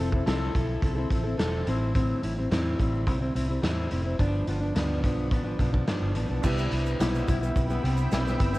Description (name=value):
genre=indie pop, bedroom pop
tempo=107 BPM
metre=4/4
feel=straight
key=C major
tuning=A4 = 440 Hz
part: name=fingerpicked plugged-in steel-string acoustic guitar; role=accompaniment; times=0.0-8.6 s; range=G2 to A4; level=-29 LUFS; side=left 1 dB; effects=lush chorus, warbly pitch drift, cassette tape
part: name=vintage muted fingered electric bass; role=bass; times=0.0-8.6 s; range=E1 to E2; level=-29 LUFS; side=equal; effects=tube saturation
part: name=raw garage drum kit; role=drums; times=0.1-8.5 s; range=crash cymbal, hi-hat, kick drum, snare drum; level=-29 LUFS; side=equal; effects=cassette tape
part: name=warm analog keys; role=accompaniment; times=6.4-8.6 s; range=D4 to B4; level=-37 LUFS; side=right 7 dB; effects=chorus, cassette tape
part: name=shimmering ambient pad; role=sustained chords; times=7.3-8.6 s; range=C4 to E6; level=-35 LUFS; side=right 1 dB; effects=chorus, built-in reverb, cassette tape
part: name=egg shaker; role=percussion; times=6.4-8.6 s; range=none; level=-50 LUFS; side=right 10 dB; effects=none
room=little or no reverb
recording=home recording on cassette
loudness=-24 LUFS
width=side -18 dB against mid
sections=0.0-6.4 A section; 6.4-8.6 B section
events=none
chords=0.0 Fmaj7; 1.7 Am7; 4.2 G7; 6.4 Cmaj7